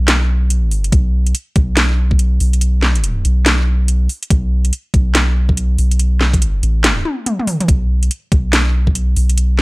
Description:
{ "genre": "deep dubstep", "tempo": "142 BPM", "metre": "4/4", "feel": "swing 62% on 16ths, half-time", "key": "unclear", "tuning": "A4 = 442 Hz", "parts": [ { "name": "soft dub sub bass", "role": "bass", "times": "0.0-9.6 s", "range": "A1 to B1", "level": "-14 LUFS", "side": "equal", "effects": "transformer saturation" }, { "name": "garage drum kit", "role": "drums", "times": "0.1-9.6 s", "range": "hi-hat, snare drum, toms", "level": "-17 LUFS", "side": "equal", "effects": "none" }, { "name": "electronic kick drum", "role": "drums", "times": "0.9-8.9 s", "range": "none", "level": "-14 LUFS", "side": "equal", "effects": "none" } ], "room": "digital ambience", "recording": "dry, gritty hardware recording, transformer saturation", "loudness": "-13 LUFS", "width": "side -24 dB against mid", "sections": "0.0-9.6 A section", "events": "drum fill 7.1-7.7", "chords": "none", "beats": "0.08 0.50 | 0.92 1.35 1.77 2.19 | 2.62 3.04 3.46 3.88 | 4.30 4.73 5.15 5.57 | 6.00 6.42 6.84 7.26 | 7.68 8.11 8.53 8.95 | 9.38" }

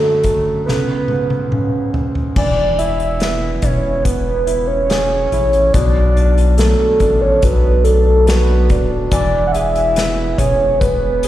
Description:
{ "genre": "pop ballad", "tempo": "71 BPM", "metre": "4/4", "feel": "straight", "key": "unclear", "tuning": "A4 = 438 Hz", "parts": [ { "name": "soft octave-layered synth lead", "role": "melody", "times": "0.0-11.3 s", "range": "A4 to F#5", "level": "-16 LUFS", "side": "right 2 dB", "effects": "chorus, phaser, slapback echo, digital delay" }, { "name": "clear grand piano", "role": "accompaniment", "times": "0.0-11.3 s", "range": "C#2 to G#4", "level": "-22 LUFS", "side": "left 1 dB", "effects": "slapback echo" }, { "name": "unplugged drum kit", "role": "drums", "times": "0.2-11.3 s", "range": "crash cymbal, hi-hat, kick drum, snare drum, toms", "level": "-20 LUFS", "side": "left 1 dB", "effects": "none" }, { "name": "saturated sub bass", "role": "bass", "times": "2.4-11.3 s", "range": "D1 to B1", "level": "-16 LUFS", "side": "left 1 dB", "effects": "none" } ], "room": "light reverb, studio reverb", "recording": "live gig heard through the venue's PA, recital hall reverb", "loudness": "-13 LUFS", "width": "side -13 dB against mid", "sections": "0.0-2.4 A section; 2.4-11.3 B section", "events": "drum fill 0.7-2.4", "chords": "0.0 D/F#; 0.7 C#5; 2.4 E; 5.7 Bm7; 9.1 E", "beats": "0.67 1.52 | 2.36 3.21 4.05 4.90 | 5.74 6.59 7.43 8.28 | 9.12 9.97 10.81" }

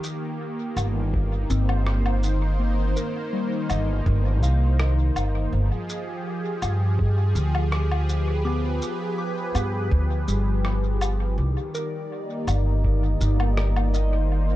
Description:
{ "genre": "ambient dub", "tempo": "82 BPM", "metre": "4/4", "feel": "straight", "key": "C minor", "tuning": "A4 = 441 Hz", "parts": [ { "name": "warm analog pad", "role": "sustained chords", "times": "0.0-14.6 s", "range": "Eb3 to C5", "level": "-29 LUFS", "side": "equal", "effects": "chorus" }, { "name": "electronic shaker, woodblock and rim click", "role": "drums", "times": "0.0-14.1 s", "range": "none", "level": "-33 LUFS", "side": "left 2 dB", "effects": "dub echo" }, { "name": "upright bass", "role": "bass", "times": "0.8-14.6 s", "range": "G1 to G2", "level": "-22 LUFS", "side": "equal", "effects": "none" }, { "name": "electronic kick drum", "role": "drums", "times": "1.1-13.0 s", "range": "none", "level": "-25 LUFS", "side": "equal", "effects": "none" }, { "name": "soft synth bell", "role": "arpeggios", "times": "1.5-14.6 s", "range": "G3 to D6", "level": "-34 LUFS", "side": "left 3 dB", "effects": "chorus, dub echo" }, { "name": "bubbling stepped-filter texture", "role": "texture", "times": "11.9-14.6 s", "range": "D5", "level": "-38 LUFS", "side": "left 1 dB", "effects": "chorus, built-in reverb" } ], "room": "digital ambience", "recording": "dark, warm production", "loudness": "-21 LUFS", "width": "side -15 dB against mid", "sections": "0.0-14.6 A section", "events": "none", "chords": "0.0 Cm7; 5.5 G7b9; 11.4 Cm9", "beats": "0.40 1.13 1.87 | 2.60 3.33 4.06 4.79 | 5.52 6.26 6.99 7.72 | 8.45 9.18 9.91 10.65 | 11.38 12.11 12.84 13.57 | 14.30" }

